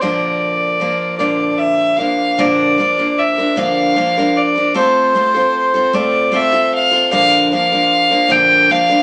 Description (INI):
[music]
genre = rock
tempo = 51 BPM (dotted quarters)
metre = 6/8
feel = straight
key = unclear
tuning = A4 = 440 Hz
[part]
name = rich fiddle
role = melody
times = 0.0-9.0 s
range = C5 to G5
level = -16 LUFS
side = equal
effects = none
[part]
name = picked steel-string acoustic guitar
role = accompaniment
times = 0.0-9.0 s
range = Bb2 to Bb4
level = -20 LUFS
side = equal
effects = none
[sound]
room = wet studio reverb, RT60 0.6 s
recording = none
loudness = -14 LUFS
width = mono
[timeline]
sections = 0.0-2.4 A section; 2.4-9.0 B section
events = none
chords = 0.0 Bb; 4.8 F/A; 7.1 Bb